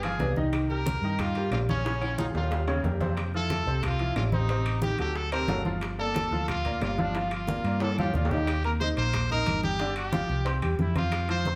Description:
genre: latin, salsa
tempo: 181 BPM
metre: 4/4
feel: straight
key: G minor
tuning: A4 = 440 Hz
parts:
  - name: bright trumpet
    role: melody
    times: 0.0-11.6 s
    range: C#4 to C5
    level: -34 LUFS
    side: equal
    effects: none
  - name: bright upright piano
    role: accompaniment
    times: 0.0-11.6 s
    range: C3 to Eb6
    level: -34 LUFS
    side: equal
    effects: none
  - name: hollow-body short-scale fingered electric bass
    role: bass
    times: 0.0-11.6 s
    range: G1 to G2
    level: -32 LUFS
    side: equal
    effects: none
  - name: claves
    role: percussion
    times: 0.0-11.3 s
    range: none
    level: -48 LUFS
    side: equal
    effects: none
  - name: congas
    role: percussion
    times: 0.0-11.6 s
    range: none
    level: -36 LUFS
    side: equal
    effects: none
  - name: timbales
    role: percussion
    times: 0.0-11.5 s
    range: none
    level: -40 LUFS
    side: equal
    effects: none
  - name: bongos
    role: percussion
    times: 0.2-11.6 s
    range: none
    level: -43 LUFS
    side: equal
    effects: none
room: wet studio reverb, RT60 0.9 s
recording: heard from further back in the room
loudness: -28 LUFS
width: mono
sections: 0.0-8.5 A section; 8.5-11.6 B section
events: drum fill 1.8-3.2, 7.8-8.5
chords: 0.0 G7b9; 0.5 Cm7; 1.8 Bbm7; 2.5 Eb9; 3.2 Fmaj7; 4.5 Am7b5; 5.2 D7b13; 5.8 Gm9; 8.5 Eb6; 9.8 G5; 10.5 C

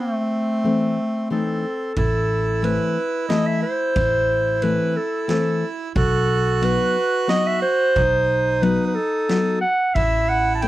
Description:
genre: klezmer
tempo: 90 BPM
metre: 3/4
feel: straight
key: A dorian sharp4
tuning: A4 = 440 Hz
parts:
  - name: warm clarinet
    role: melody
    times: 0.0-10.7 s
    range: A3 to A5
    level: -21 LUFS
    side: equal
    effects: slapback echo
  - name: accordion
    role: second line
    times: 0.0-10.7 s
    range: C4 to F#4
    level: -27 LUFS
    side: right 6 dB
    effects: slapback echo
  - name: nylon-string guitar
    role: accompaniment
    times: 0.6-10.7 s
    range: E3 to D#5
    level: -22 LUFS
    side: left 3 dB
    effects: none
  - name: upright bass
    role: bass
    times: 2.0-10.7 s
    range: A1 to B1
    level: -24 LUFS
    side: equal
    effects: none
  - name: street-band drum kit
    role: drums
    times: 2.0-10.7 s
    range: kick drum, ride cymbal, snare drum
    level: -27 LUFS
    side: equal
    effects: none
room: light reverb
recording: dry, close 1970s-style studio recording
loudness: -18 LUFS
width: side -15 dB against mid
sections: 0.0-2.0 A section; 2.0-10.7 B section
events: break 0.0-2.0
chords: 0.0 Am; 6.0 B; 10.0 A5

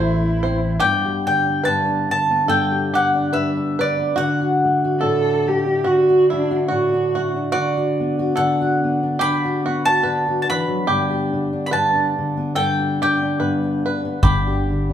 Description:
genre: acoustic folk duo or small band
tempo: 72 BPM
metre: 4/4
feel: swing 55% on 8ths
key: unclear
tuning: A4 = 440 Hz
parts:
  - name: dark cello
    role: second line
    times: 0.0-7.3 s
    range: D4 to A4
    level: -19 LUFS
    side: right 2 dB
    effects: none
  - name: fingerpicked steel-string acoustic guitar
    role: accompaniment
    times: 0.0-14.9 s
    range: E2 to G4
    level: -22 LUFS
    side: left 2 dB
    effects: none
  - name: bluegrass banjo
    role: arpeggios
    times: 0.0-14.9 s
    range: E4 to C5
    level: -26 LUFS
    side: right 1 dB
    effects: none
  - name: fingered electric bass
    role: bass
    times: 0.0-0.8, 14.2-14.9 s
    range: G1 to A1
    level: -21 LUFS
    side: equal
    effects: none
  - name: mandolin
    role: melody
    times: 0.8-14.9 s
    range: D5 to B5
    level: -20 LUFS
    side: equal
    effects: none
  - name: kick drum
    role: drums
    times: 14.2-14.4 s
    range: none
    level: -18 LUFS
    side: equal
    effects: none
room: wet large studio reverb, RT60 1.3 s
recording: band playing live in one room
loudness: -17 LUFS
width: side -10 dB against mid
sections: 0.8-14.9 A section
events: none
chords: 0.0 Am; 0.8 G; 4.2 D; 7.5 Bm/D; 10.9 G

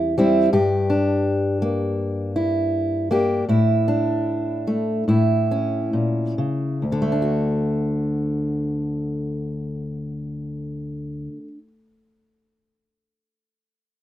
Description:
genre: folk, solo fingerstyle acoustic guitar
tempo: 66-84 BPM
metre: 4/4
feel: rubato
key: unclear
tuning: A4 = 441 Hz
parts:
  - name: fingerpicked steel-string acoustic guitar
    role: solo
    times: 0.0-11.7 s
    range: D2 to G4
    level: -20 LUFS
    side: equal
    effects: none
room: moderate studio ambience, RT60 0.5 s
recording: rough home demo mix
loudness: -20 LUFS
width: side -12 dB against mid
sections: 0.0-6.8 A section; 6.8-10.4 B section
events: slowing down 0.5-6.8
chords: 0.0 C/E; 0.5 Gm; 3.5 Asus4; 5.1 A; 6.8 D

